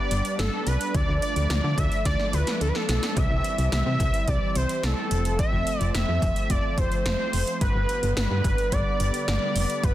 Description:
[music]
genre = synth-pop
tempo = 108 BPM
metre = 4/4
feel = straight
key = unclear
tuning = A4 = 436 Hz
[part]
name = wide unison lead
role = melody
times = 0.0-9.9 s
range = A4 to E5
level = -28 LUFS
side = equal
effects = tape echo, shimmer reverb
[part]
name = brassy analog pad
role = sustained chords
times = 0.0-9.9 s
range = D3 to D4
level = -32 LUFS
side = right 1 dB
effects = chorus, shimmer reverb
[part]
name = solid FM bass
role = bass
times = 0.1-9.9 s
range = F1 to D3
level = -25 LUFS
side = equal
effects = none
[part]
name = 80s electronic pad drums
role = drums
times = 0.1-9.9 s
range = hi-hat, kick drum, snare drum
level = -27 LUFS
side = equal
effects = none
[sound]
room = light reverb, digital ambience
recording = dense, heavily limited modern master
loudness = -22 LUFS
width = side -14 dB against mid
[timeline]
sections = 0.0-9.9 A section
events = drum fill 2.1-3.2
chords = 0.0 G; 0.9 Dm; 3.2 C; 5.1 F; 7.6 G

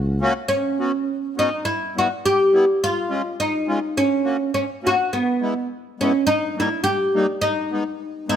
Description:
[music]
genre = alpine folk, alpine dance band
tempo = 104 BPM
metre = 2/4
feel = swing 54% on 8ths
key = B major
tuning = A4 = 436 Hz
[part]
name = oud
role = melody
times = 0.0-8.4 s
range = B3 to G4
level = -19 LUFS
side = equal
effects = none
[part]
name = accordion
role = accompaniment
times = 0.2-8.4 s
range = G3 to F#4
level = -25 LUFS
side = left 2 dB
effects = none
[sound]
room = light reverb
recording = close, detailed microphones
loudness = -19 LUFS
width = side -9 dB against mid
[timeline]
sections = 0.5-8.4 A section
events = none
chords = 0.5 Bsus2; 1.6 Em; 2.8 C#; 3.9 F#; 5.1 E; 6.3 D#; 7.4 G#m

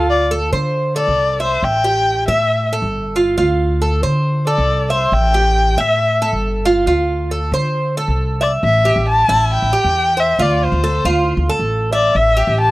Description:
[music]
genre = latin, Cuban son and guajira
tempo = 137 BPM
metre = 4/4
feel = straight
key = A minor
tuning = A4 = 440 Hz
[part]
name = warm erhu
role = melody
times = 0.0-12.7 s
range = C5 to A5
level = -16 LUFS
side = left 1 dB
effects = none
[part]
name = Cuban tres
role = arpeggios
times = 0.0-12.7 s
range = E4 to E5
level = -19 LUFS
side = right 2 dB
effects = none
[part]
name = upright bass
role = bass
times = 0.0-12.7 s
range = G1 to D3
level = -19 LUFS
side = equal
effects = none
[sound]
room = small room ambience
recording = dry, close 1970s-style studio recording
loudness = -14 LUFS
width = side -18 dB against mid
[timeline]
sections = 0.0-8.6 A section; 8.6-12.7 B section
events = erhu solo 0.0-8.6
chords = 0.0 Dm7; 1.6 A5; 3.4 Dm7; 5.1 A5; 6.9 Dm7; 8.6 Am7; 10.4 Dm7; 12.1 A7(no3)

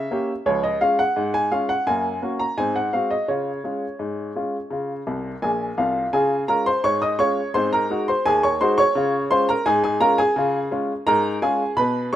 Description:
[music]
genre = ragtime piano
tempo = 85 BPM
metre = 2/4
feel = straight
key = Db major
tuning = A4 = 440 Hz
[part]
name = clear upright piano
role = solo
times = 0.0-12.2 s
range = Bb1 to Eb6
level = -19 LUFS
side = equal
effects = none
[sound]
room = light reverb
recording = rough home demo mix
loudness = -19 LUFS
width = side -12 dB against mid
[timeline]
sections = 0.0-6.1 A section; 6.1-12.2 B section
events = upright piano fill 5.1-6.1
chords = 0.5 Db; 1.9 Gb; 2.6 Ab7; 3.3 Db; 7.5 Ab7; 9.0 Db

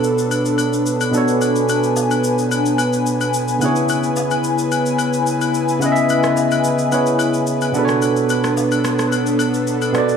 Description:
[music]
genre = amapiano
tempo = 109 BPM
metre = 4/4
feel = straight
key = B dorian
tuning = A4 = 440 Hz
[part]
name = barky tine electric piano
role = accompaniment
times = 0.0-10.2 s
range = B2 to E5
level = -18 LUFS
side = right 1 dB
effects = wide subtle chorus
[part]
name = airy breathy pad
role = sustained chords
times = 0.0-10.2 s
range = B3 to G#5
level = -20 LUFS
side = left 2 dB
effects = chorus
[part]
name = electronic shaker and rim click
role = drums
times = 0.0-10.2 s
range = none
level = -28 LUFS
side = left 1 dB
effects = none
[part]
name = agogo bells and woodblock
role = percussion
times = 0.3-9.9 s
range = none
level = -27 LUFS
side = left 8 dB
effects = none
[sound]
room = moderate concert hall reverb, RT60 2.3 s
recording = small room ambience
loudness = -15 LUFS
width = side -7 dB against mid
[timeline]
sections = 0.0-10.2 A section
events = none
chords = 0.0 Bm9; 3.6 C#m7; 7.7 Bm9

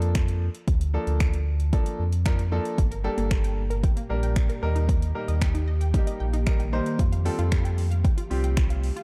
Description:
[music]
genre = dance-pop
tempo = 114 BPM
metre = 4/4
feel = straight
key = Bb major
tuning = A4 = 438 Hz
[part]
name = clear grand piano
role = accompaniment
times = 0.0-8.9 s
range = F3 to C5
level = -34 LUFS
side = equal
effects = sidechain pumping
[part]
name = sub bass with octave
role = bass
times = 0.0-8.9 s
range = G1 to F2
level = -27 LUFS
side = equal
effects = sidechain pumping
[part]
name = deep house drum kit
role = drums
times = 0.0-9.0 s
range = finger snaps, hi-hat, kick drum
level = -27 LUFS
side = equal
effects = overdrive
[part]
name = ethereal airy pad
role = sustained chords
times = 3.6-9.0 s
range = Bb2 to G4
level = -39 LUFS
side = equal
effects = ensemble chorus, built-in reverb, sidechain pumping
[part]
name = unison pluck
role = arpeggios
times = 2.8-9.0 s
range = Bb3 to G5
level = -41 LUFS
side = equal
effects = sidechain pumping, tape echo
[sound]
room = little or no reverb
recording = dark, warm production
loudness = -25 LUFS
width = mono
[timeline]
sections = 0.0-9.0 A section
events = none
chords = 0.0 Bbmaj7/D; 2.8 Gmadd9; 4.6 Eb; 7.0 Fadd9

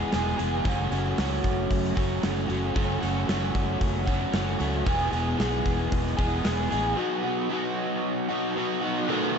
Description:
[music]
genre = rock, shoegaze and dream pop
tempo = 114 BPM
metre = 4/4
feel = straight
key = E major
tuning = A4 = 440 Hz
[part]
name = overdriven electric guitar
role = riff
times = 0.0-9.4 s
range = E2 to G#4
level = -26 LUFS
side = equal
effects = lush chorus
[part]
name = fingered electric bass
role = bass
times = 0.1-6.9 s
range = E1 to C#2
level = -30 LUFS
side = equal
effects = none
[part]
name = gated 80s drum kit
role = drums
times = 0.1-6.8 s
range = hi-hat, kick drum, snare drum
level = -29 LUFS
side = equal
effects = none
[sound]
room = light reverb, studio reverb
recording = nothing above 7.9 kHz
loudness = -24 LUFS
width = side -6 dB against mid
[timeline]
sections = 0.0-9.1 A section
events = break 7.0-9.1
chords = 0.0 E; 0.6 F#m; 4.9 E; 7.0 B

